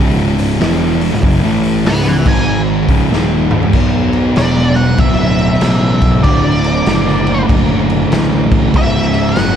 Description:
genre	stoner and doom metal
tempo	96 BPM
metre	4/4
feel	swing 64% on 8ths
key	unclear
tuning	A4 = 439 Hz
part	thick fuzz guitar	riff	0.0-9.6 s	C#2 to B3	-17 LUFS	left 11 dB	distortion
part	thick fuzz guitar	riff	0.0-9.6 s	C#2 to B3	-16 LUFS	right 10 dB	distortion
part	fuzz picked electric bass	bass	0.0-9.6 s	C#1 to B1	-18 LUFS	equal	overdrive
part	raw garage drum kit	drums	0.4-9.6 s	crash cymbal, hi-hat, kick drum, snare drum, toms	-16 LUFS	equal	none
part	octave-fuzz lead guitar	melody	1.9-9.6 s	D5 to B5	-20 LUFS	equal	wah, distortion, tape echo
room	little or no reverb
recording	dark, warm production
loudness	-10 LUFS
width	side -9 dB against mid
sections	0.0-3.7 A section; 3.7-9.6 B section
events	lead electric guitar solo 0.0-3.7; drum fill 3.1-3.7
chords	0.0 C#m; 2.2 G#5; 2.8 C#5; 3.7 Bm; 6.2 D; 8.7 C#m

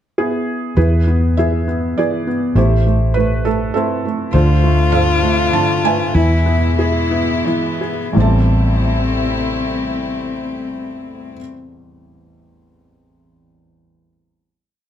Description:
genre	acoustic folk-pop ballad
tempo	83-102 BPM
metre	3/4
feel	straight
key	A harmonic minor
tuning	A4 = 440 Hz
part	felt-muted upright piano	melody	0.2-14.9 s	A1 to A5	-18 LUFS	right 2 dB	slapback echo
part	vintage muted fingered electric bass	bass	0.8-11.4 s	A1 to E2	-15 LUFS	equal	none
part	warm cello	second line	4.3-11.4 s	B3 to F4	-21 LUFS	left 5 dB	none
part	warm chamber string section	sustained chords	4.3-11.4 s	B2 to E4	-25 LUFS	left 2 dB	none
room	little or no reverb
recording	close, detailed microphones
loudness	-14 LUFS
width	side -10 dB against mid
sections	0.0-0.8 pickup bar; 0.8-8.2 pre-chorus; 8.2-12.5 final chord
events	slowing down 4.3-8.2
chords	0.0 E; 2.6 Am7; 4.3 Dm7; 6.1 E; 8.2 Am7

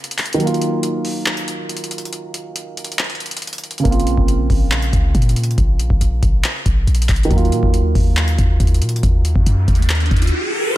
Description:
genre	hip hop, trap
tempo	139 BPM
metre	4/4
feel	half-time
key	unclear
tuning	A4 = 440 Hz
part	dark concert grand piano	accompaniment	0.0-10.8 s	Db3 to F4	-23 LUFS	right 3 dB	none
part	booming analog drum machine	drums	0.0-10.3 s	handclaps, hi-hat, kick drum	-18 LUFS	equal	overdrive
part	clean 808-style bass	bass	3.9-10.3 s	Bb1 to Bb2	-16 LUFS	equal	none
part	riser	sound effects	9.6-10.8 s	none	-21 LUFS	equal	none
room	digital ambience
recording	dense, heavily limited modern master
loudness	-14 LUFS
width	side -15 dB against mid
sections	0.0-10.8 A section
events	break 0.0-3.9, 10.3-10.8; riser 9.6-10.8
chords	0.4 Ebmadd9; 3.9 Bbmadd9; 7.3 Ebmadd9

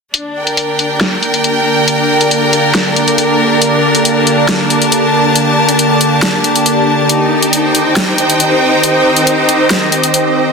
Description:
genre	heavy wobble dubstep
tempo	138 BPM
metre	4/4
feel	half-time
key	G minor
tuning	A4 = 439 Hz
part	evolving wavetable pad	sustained chords	0.7-10.5 s	D3 to Eb5	-14 LUFS	right 1 dB	phaser, built-in reverb
part	dubstep drum kit	drums	0.1-10.2 s	hi-hat, snare drum	-13 LUFS	left 1 dB	low-pass filter on hats, low-pass filter on snare
part	bright studio string section	texture	0.1-10.5 s	D4 to A5	-12 LUFS	equal	none
room	wet digital room reverb, RT60 1.0 s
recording	dense, heavily limited modern master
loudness	-9 LUFS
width	side -4 dB against mid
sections	0.1-10.5 A section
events	filter sweep on ambient pad 0.1-10.5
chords	0.1 Gm; 7.1 Cm

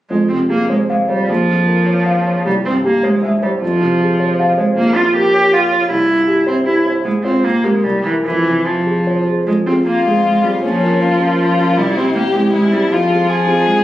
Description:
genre	quick classical-period movement for piano trio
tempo	156 BPM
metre	3/4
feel	rubato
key	F minor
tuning	A4 = 440 Hz
part	warm cello	second line	0.1-13.8 s	E3 to G4	-15 LUFS	right 1 dB	none
part	dark baby grand piano	accompaniment	0.1-13.8 s	Bb1 to F5	-17 LUFS	equal	none
part	dark violin	melody	9.9-13.8 s	Db4 to Ab4	-17 LUFS	left 4 dB	none
room	moderate recital hall reverb, RT60 1.5 s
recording	recorded on a phone in the room, studio ambience, compression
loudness	-12 LUFS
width	side -14 dB against mid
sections	0.1-9.5 A section; 9.5-13.8 A section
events	none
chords	0.1 Fm; 1.3 Bbm; 2.5 C; 3.6 Fm; 4.8 Bbm; 5.9 C; 7.1 Fm/Ab; 7.4 Gm/Bb; 7.8 C7; 8.2 Fm; 10.6 Bbm; 11.8 C; 12.9 Fm

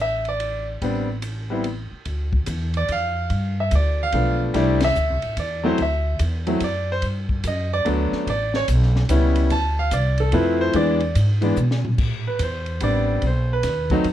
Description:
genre	jazz piano trio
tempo	145 BPM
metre	3/4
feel	swing 65% on 8ths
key	A minor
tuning	A4 = 438 Hz
part	clear concert grand piano	melody	0.0-14.0 s	E3 to A5	-22 LUFS	equal	none
part	upright bass	bass	0.0-14.1 s	A1 to B2	-22 LUFS	equal	none
part	compact cocktail drum kit	drums	0.2-14.1 s	crash cymbal, hi-hat, kick drum, ride cymbal, snare drum, toms	-30 LUFS	left 1 dB	none
room	light reverb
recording	none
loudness	-19 LUFS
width	side -12 dB against mid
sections	0.0-2.1 A section; 2.1-12.0 B section; 12.0-14.1 C section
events	band accent 4.8; drum fill 11.6-12.0; grand piano solo 12.0-14.1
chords	0.0 Asus4; 2.1 Dm; 3.3 G7; 4.5 C69; 5.8 D; 7.0 Gmaj9; 8.3 A7; 9.5 Dm7; 10.7 E7; 12.0 Am11; 13.2 B(b9)

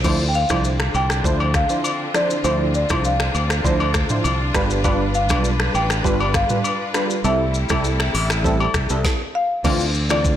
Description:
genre	afrobeats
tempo	100 BPM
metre	4/4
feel	straight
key	D dorian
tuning	A4 = 440 Hz
part	warm analog keys	accompaniment	0.0-10.3 s	E3 to C5	-24 LUFS	right 2 dB	chorus
part	clear studio string section	sustained chords	0.0-10.4 s	C3 to B4	-28 LUFS	left 1 dB	none
part	modern bright fingered electric bass	bass	0.0-10.4 s	G1 to D2	-22 LUFS	equal	none
part	afro-pop drum kit	drums	0.0-10.4 s	crash cymbal, finger snaps, hi-hat, kick drum, rim click, shaker, snare drum, toms	-23 LUFS	equal	soft clipping on snare
part	agogo bells	percussion	0.0-10.2 s	none	-28 LUFS	left 5 dB	none
part	marimba with medium mallets	melody	0.3-10.4 s	D5 to G5	-24 LUFS	left 1 dB	ping-pong delay
room	light reverb, digital ambience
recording	blown-out, overdriven recording, overdrive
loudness	-17 LUFS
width	side -10 dB against mid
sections	0.0-9.6 A section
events	stop 9.0-9.6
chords	0.0 Dm9; 4.5 G7; 7.2 C6; 9.6 Dm9

